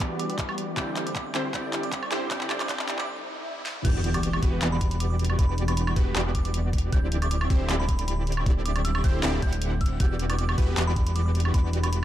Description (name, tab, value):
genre	future bass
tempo	156 BPM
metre	4/4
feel	half-time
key	E minor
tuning	A4 = 443 Hz
part	ethereal airy pad	sustained chords	0.0-12.0 s	D3 to F#5	-38 LUFS	left 1 dB	ensemble chorus, built-in reverb, sidechain pumping
part	supersaw stab	riff	0.0-12.0 s	D3 to F#5	-31 LUFS	right 1 dB	sidechain pumping, low-pass filter
part	fat analog bass	bass	0.0-12.0 s	D1 to E1	-26 LUFS	equal	sidechain pumping, high-pass filter
part	electronic kick drum	drums	0.0-11.6 s	none	-24 LUFS	equal	none
part	pop drum kit	drums	0.0-12.0 s	crash cymbal, handclaps, hi-hat, snare drum, toms, woodblock	-32 LUFS	equal	high-pass filter on snare, high-pass filter on hats, high-pass filter on perc, high-pass filter on toms, high-pass filter on cymbals, high-pass filter on room
part	riser, swell and sub drop	sound effects	0.6-5.4 s	none	-38 LUFS	equal	none
part	glassy synth bell	melody	0.2-12.0 s	B5 to G6	-37 LUFS	right 3 dB	chorus, tremolo, sidechain pumping, low-pass filter, tape echo
room	little or no reverb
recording	dark, warm production, high-pass filter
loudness	-23 LUFS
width	side -12 dB against mid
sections	0.0-3.8 A section; 3.8-12.0 B section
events	build-up 0.0-3.8; drum fill 0.0-3.1, 3.7; filter sweep on supersaw synth 0.0-3.8; filter sweep on synth bell 0.0-3.8; filter sweep on ambient pad 0.0-3.8; filter sweep 0.0-3.8; break 3.1-3.8; swell 3.1-3.8; drop 3.8-12.0; impact 3.8-5.4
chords	0.0 Em9; 0.8 D7sus4; 3.8 Em9; 6.9 D7sus4; 10.0 Em9